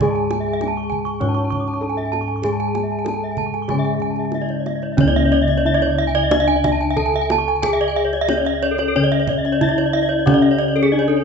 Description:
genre	Balinese gamelan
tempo	91-102 BPM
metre	4/4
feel	straight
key	C# pelog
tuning	A4 = 444 Hz
part	gamelan-type bronze metallophone	melody	0.0-11.2 s	C#4 to C#5	-24 LUFS	left 3 dB	none
part	gamelan-type bronze metallophone	accompaniment	0.0-5.0, 10.3-11.2 s	C#3 to C#4	-26 LUFS	left 3 dB	none
part	gamelan-type bronze metallophone	arpeggios	0.0-11.2 s	A4-20c to D6+20c	-24 LUFS	left 3 dB	none
part	gamelan-type bossed gongs	bass	0.0-11.2 s	C#2 to G#4-30c	-21 LUFS	equal	none
part	kendang	percussion	0.0-11.2 s	none	-24 LUFS	right 5 dB	none
part	gamelan-type bronze metallophone	arpeggios	0.2-11.2 s	G#4-30c to C#6	-22 LUFS	right 4 dB	none
room	moderate large studio reverb, RT60 0.9 s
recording	band playing live in one room, nothing above 7.9 kHz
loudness	-16 LUFS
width	side -6 dB against mid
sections	0.0-5.0 A section; 5.0-11.2 B section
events	none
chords	none

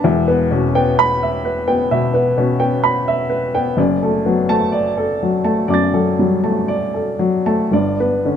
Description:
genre	neoclassical minimalist piano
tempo	56-65 BPM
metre	4/4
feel	rubato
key	unclear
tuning	A4 = 440 Hz
part	dark upright piano	solo	0.0-8.4 s	E1 to A6	-14 LUFS	left 1 dB	none
room	light reverb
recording	close, detailed microphones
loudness	-14 LUFS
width	side -8 dB against mid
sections	0.0-8.4 A section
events	none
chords	0.0 Em; 3.8 D/F#; 7.7 G

